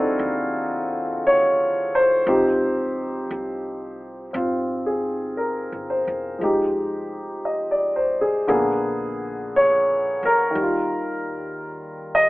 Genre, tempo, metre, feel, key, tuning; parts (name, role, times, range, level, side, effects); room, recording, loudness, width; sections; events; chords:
jazz ballad; 58 BPM; 4/4; swing 69% on 8ths; A4 = 440 Hz
warm upright piano; accompaniment; 0.0-12.3 s; C3 to Eb5; -20 LUFS; equal
upright bass; bass; 0.0-12.3 s; E1 to E2; -41 LUFS; equal
light reverb; telephone sound; -20 LUFS; side -19 dB against mid
0.0-12.3 A section
0.0 Ab7b9; 2.3 Dbmaj9#11; 6.4 Fm9; 8.5 Bb7b9; 10.6 Ebadd9